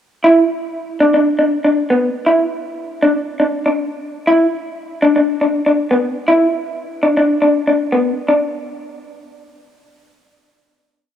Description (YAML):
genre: highlife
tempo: 119 BPM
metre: 4/4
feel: swing 53% on 16ths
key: unclear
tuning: A4 = 440 Hz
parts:
  - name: electric guitar through a small old amp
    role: solo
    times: 0.2-8.4 s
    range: B3 to E4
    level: -14 LUFS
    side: equal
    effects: lush chorus, cassette tape
room: moderate lush hall reverb, RT60 3.1 s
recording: home recording on cassette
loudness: -13 LUFS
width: side -9 dB against mid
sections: 0.2-8.3 A section; 8.3-10.3 final note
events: none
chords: none